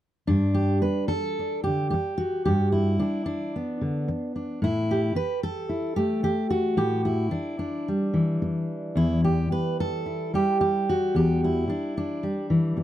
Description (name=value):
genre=folk, solo fingerstyle acoustic guitar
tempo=111 BPM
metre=4/4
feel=straight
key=G major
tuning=A4 = 440 Hz
part: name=fingerpicked steel-string acoustic guitar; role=solo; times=0.3-12.8 s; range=E2 to B4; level=-23 LUFS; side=equal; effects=none
room=little or no reverb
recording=dry, close 1970s-style studio recording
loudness=-23 LUFS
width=side -12 dB against mid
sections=0.3-12.8 A section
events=none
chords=0.3 G; 4.6 A5